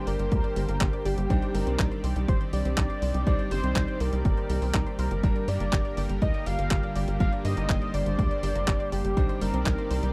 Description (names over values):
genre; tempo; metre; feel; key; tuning
italo disco; 122 BPM; 4/4; straight; G minor; A4 = 439 Hz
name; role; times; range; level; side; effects
unison lead; melody; 0.0-10.1 s; G4 to F5; -35 LUFS; equal; tape echo
lush unison pad; sustained chords; 0.0-10.1 s; D3 to D5; -38 LUFS; equal; chorus
analog pluck; arpeggios; 0.0-10.1 s; G3 to D5; -40 LUFS; equal; chorus, tape echo
clear electric grand piano; stabs; 0.0-10.1 s; D3 to C5; -40 LUFS; equal; none
tight sequencer bass; bass; 0.1-10.1 s; G1 to G2; -31 LUFS; equal; none
clean 12-bit digital drum machine; drums; 0.1-10.1 s; handclaps, hi-hat; -37 LUFS; equal; none
electronic kick drum; drums; 0.3-9.8 s; none; -29 LUFS; equal; none
room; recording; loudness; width
light reverb; dry, close 1970s-style studio recording; -27 LUFS; mono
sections
0.0-10.1 A section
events
none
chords
0.0 Gm; 1.3 Cmadd9; 5.2 Gm; 9.2 Cmadd9